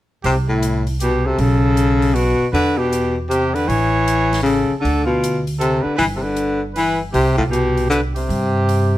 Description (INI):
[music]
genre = jazz, small-group swing and bop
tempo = 157 BPM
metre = 3/4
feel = swing 64% on 8ths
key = C major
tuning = A4 = 439 Hz
[part]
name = clear trumpet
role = second line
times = 0.2-9.0 s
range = E4 to C#5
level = -24 LUFS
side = right 5 dB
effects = none
[part]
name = upright bass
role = bass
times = 0.2-9.0 s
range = G1 to G2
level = -20 LUFS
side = right 1 dB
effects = none
[part]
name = swinging big-band drum kit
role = drums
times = 0.2-8.8 s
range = hi-hat, kick drum, snare drum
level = -34 LUFS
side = left 1 dB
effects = none
[part]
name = breathy baritone saxophone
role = melody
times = 0.3-9.0 s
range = A2 to E3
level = -18 LUFS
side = left 2 dB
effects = none
[sound]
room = light reverb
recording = none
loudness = -15 LUFS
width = side -14 dB against mid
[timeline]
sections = 0.3-9.0 A section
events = none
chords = 0.3 C; 1.4 F#madd11/B; 2.6 Em; 3.7 A; 4.9 Dm; 6.0 G; 7.2 Cmaj7(no3)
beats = | 0.25 0.64 1.02 | 1.40 1.79 2.17 | 2.55 2.94 3.32 | 3.70 4.09 4.47 | 4.85 5.24 5.62 | 6.00 6.38 6.77 | 7.15 7.54 7.92 | 8.30 8.69